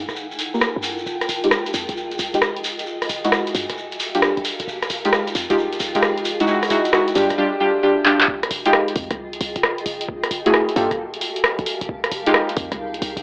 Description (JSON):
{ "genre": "UK garage, two-step garage", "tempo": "133 BPM", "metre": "4/4", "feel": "swing 66% on 16ths", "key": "F dorian", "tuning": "A4 = 440 Hz", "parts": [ { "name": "short 808-style bass", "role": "bass", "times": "0.0-13.2 s", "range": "D1 to G2", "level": "-28 LUFS", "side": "equal", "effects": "none" }, { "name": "granular cloud pad", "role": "texture", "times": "0.0-13.2 s", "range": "Eb4 to G5", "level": "-28 LUFS", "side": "equal", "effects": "built-in reverb, sidechain pumping" }, { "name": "punchy analog drum machine", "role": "drums", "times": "0.1-13.2 s", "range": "handclaps, hi-hat, rim click", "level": "-21 LUFS", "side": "equal", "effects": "none" }, { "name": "shekere", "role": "percussion", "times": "0.1-7.4 s", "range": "none", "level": "-29 LUFS", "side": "equal", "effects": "none" }, { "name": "deep mellow chord stab", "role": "stabs", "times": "0.5-12.3 s", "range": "G3 to Bb4", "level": "-19 LUFS", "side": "equal", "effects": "chorus, tape echo" }, { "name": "electronic kick drum", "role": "drums", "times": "8.3-12.8 s", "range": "none", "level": "-32 LUFS", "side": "equal", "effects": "none" } ], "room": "moderate plate reverb, RT60 1.4 s", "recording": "dry, gritty hardware recording, AM radio sound", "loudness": "-17 LUFS", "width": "side -28 dB against mid", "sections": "0.0-8.3 A section; 8.3-13.2 B section", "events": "build-up 0.0-8.3; filter sweep on synth stab 0.0-8.3; drum fill 8.1; drop 8.3-13.2", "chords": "0.0 Gm9; 1.1 Fm9; 2.6 Gbm9; 3.5 Gm9; 4.7 Fm9; 6.3 Gbm9; 7.2 Gm7; 8.3 Fm9; 9.9 Gbm9; 10.8 Gm9; 11.9 Fm9", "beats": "0.16 0.61 | 1.06 1.52 1.97 2.42 | 2.87 3.32 3.77 4.22 | 4.67 5.13 5.58 6.03 | 6.48 6.93 7.38 7.83 | 8.28 8.73 9.19 9.64 | 10.09 10.54 10.99 11.44 | 11.89 12.34 12.79" }